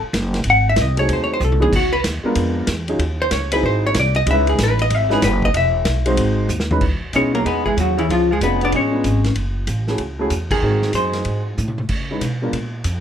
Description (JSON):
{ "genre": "jazz, small-group swing and bop", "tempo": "189 BPM", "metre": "4/4", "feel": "swing 64% on 8ths", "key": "C# minor", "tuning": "A4 = 440 Hz", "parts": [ { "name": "upright bass", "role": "bass", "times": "0.0-13.0 s", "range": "E1 to C#3", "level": "-20 LUFS", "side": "equal", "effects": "none" }, { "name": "vintage drum kit", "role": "drums", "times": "0.1-12.9 s", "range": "crash cymbal, hi-hat, kick drum, ride cymbal, snare drum, toms", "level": "-25 LUFS", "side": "equal", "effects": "none" }, { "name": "vintage hollow-body jazz guitar", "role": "melody", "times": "0.5-11.4 s", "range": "E3 to F#5", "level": "-18 LUFS", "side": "left 2 dB", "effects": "none" }, { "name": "dark upright piano", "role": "accompaniment", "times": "1.0-12.5 s", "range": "E3 to B#4", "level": "-22 LUFS", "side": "equal", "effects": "none" }, { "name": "breathy alto saxophone", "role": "second line", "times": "7.1-11.4 s", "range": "C#3 to B3", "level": "-27 LUFS", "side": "right 3 dB", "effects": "none" } ], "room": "little or no reverb", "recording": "none", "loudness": "-16 LUFS", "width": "side -9 dB against mid", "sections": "0.0-6.8 A section; 6.8-13.0 B section", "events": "hollow-body jazz guitar solo 0.0-6.8; drum fill 1.4-1.7, 6.5-6.8, 11.6-11.9; band accent 10.5", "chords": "0.5 G#7b9; 1.7 C#5; 2.4 A#7b9; 3.0 D#m7; 3.6 G#7b13; 4.3 C#m7; 6.2 G#7; 6.8 C#m7; 8.1 C#7b9; 9.4 F#m7; 10.6 G#7b9; 11.9 C#m7" }